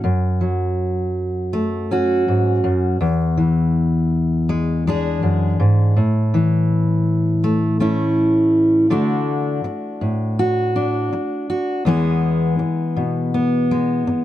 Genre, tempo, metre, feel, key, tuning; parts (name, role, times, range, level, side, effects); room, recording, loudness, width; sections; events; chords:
folk; 81 BPM; 4/4; straight; A4 = 436 Hz
fingerpicked steel-string acoustic guitar; solo; 0.0-14.2 s; E2 to G#4; -16 LUFS; equal
light reverb; close, detailed microphones; -16 LUFS; side -13 dB against mid
0.0-8.9 A section; 8.9-14.2 B section
0.0 F#m; 3.0 E7; 6.0 A; 8.9 D; 11.9 E